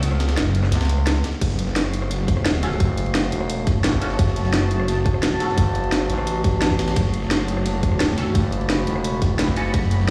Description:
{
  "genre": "dark technical drum and bass",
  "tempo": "173 BPM",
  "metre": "4/4",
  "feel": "straight",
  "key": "F# minor",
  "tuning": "A4 = 441 Hz",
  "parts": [
    { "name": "metallic inharmonic drone", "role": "sustained chords", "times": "0.0-10.1 s", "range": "C#3 to F#4", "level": "-30 LUFS", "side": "equal", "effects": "chorus, built-in reverb, phaser, sidechain pumping" },
    { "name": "snarling distorted saw bass", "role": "bass", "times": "0.0-10.1 s", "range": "F#1 to C#2", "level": "-25 LUFS", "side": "equal", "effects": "distortion, overdrive, sidechain pumping" },
    { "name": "breakbeat sampler-style drum kit", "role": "drums", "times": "0.0-10.1 s", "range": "ride cymbal, snare drum", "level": "-35 LUFS", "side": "equal", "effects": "high-pass filter on cymbals, high-pass filter on snare" },
    { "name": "drum and bass drum kit", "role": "drums", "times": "0.0-10.0 s", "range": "crash cymbal, hi-hat, rim click, snare drum", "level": "-27 LUFS", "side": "equal", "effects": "none" },
    { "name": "growling FM bass", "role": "bass", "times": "0.7-9.7 s", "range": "E1 to C#2", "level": "-25 LUFS", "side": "equal", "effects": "none" },
    { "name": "electronic kick drum", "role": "drums", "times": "1.4-9.8 s", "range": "none", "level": "-22 LUFS", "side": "equal", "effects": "none" },
    { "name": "warbly tape-like pad", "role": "texture", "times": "2.0-10.1 s", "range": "F#4 to B5", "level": "-32 LUFS", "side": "equal", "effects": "chorus, built-in reverb, sidechain pumping" },
    { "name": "band-passed chord stab", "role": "stabs", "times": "2.6-5.5, 8.2-9.6 s", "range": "C#4 to A4", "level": "-35 LUFS", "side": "equal", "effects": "phaser, ensemble chorus, digital delay" }
  ],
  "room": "light reverb",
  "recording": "played on a big sound system in a bare room, stone room reverb, small room ambience",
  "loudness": "-21 LUFS",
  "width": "mono",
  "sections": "0.0-1.4 A section; 1.4-10.1 A section",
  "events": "drop 0.0-1.4, 1.4-10.1; kick drops out 0.7-1.4",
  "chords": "0.0 F#m"
}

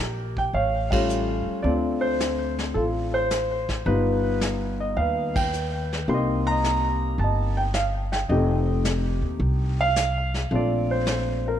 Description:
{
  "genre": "jazz piano trio",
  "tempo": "108 BPM",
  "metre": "4/4",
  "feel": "swing 69% on 8ths",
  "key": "unclear",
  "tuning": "A4 = 436 Hz",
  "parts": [
    { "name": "warm concert grand piano", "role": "melody", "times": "0.0-11.6 s", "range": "G3 to C6", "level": "-24 LUFS", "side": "left 1 dB", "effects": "ping-pong delay" },
    { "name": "upright bass", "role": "bass", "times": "0.0-11.6 s", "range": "F1 to D#2", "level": "-26 LUFS", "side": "equal", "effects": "none" },
    { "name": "vintage brush drum kit", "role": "drums", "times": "0.4-11.6 s", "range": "brushed snare drum, hi-hat, kick drum, ride cymbal, snare drum", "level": "-31 LUFS", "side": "equal", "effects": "none" }
  ],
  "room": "moderate plate reverb, RT60 1.9 s, studio ambience",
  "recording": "dreamy mix soaked in reverb",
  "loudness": "-22 LUFS",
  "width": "side -10 dB against mid",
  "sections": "0.0-11.6 A section",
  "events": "band accent 0.8, 5.3",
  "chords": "0.0 Edim (rootless); 0.5 Aaug7; 1.6 Dm7; 3.9 Gaug7; 6.1 Cm7; 8.3 F9; 10.5 Bbmaj9"
}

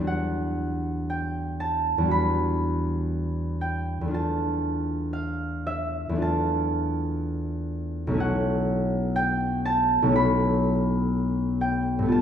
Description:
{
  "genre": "classical, solo harp piece",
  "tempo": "60 BPM",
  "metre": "4/4",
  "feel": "uneven beats, rubato",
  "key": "unclear",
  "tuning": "A4 = 440 Hz",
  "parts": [
    { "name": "concert harp", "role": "solo", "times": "0.0-12.2 s", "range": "B1 to B5", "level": "-23 LUFS", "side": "equal", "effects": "none" }
  ],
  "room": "wet recital hall reverb, RT60 1.5 s",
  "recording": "heard from further back in the room",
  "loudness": "-23 LUFS",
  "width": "side -8 dB against mid",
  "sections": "0.0-12.2 A section",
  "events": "none",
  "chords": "0.1 Em9; 4.1 Dm/E; 8.2 Bm11"
}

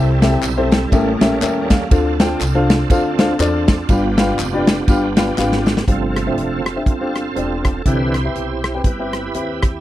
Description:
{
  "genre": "uptempo gospel",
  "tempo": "121 BPM",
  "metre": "4/4",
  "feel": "swing 58% on 8ths",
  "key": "unclear",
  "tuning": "A4 = 442 Hz",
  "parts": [
    { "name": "warm upright piano", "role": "accompaniment", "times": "0.0-9.7 s", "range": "G2 to A5", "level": "-20 LUFS", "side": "left 2 dB", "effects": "none" },
    { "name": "bright tonewheel organ", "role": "sustained chords", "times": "0.0-9.8 s", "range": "C3 to C5", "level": "-23 LUFS", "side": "right 5 dB", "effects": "fast rotary speaker, overdrive, chorus vibrato" },
    { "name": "upright bass", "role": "bass", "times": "0.0-9.8 s", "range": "E1 to E2", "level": "-22 LUFS", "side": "equal", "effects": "none" },
    { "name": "modern studio drum kit", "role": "drums", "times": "0.2-9.7 s", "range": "hi-hat, kick drum, ride cymbal, rim click, snare drum", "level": "-16 LUFS", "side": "equal", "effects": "none" },
    { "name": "tambourine and handclaps", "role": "percussion", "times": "0.2-5.8 s", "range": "none", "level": "-30 LUFS", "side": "left 2 dB", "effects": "none" }
  ],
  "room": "little or no reverb",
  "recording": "dry, close 1970s-style studio recording, faint mains hum",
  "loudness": "-14 LUFS",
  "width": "side -14 dB against mid",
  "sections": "0.0-5.9 A section; 5.9-9.8 B section",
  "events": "upright piano fill 0.9-1.9; drum fill 5.4-5.9; tonewheel organ solo 5.9-9.8",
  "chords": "0.0 C6; 0.9 A7b9; 1.9 Dm7; 3.9 G7; 5.9 G7sus4; 7.9 Cmaj7"
}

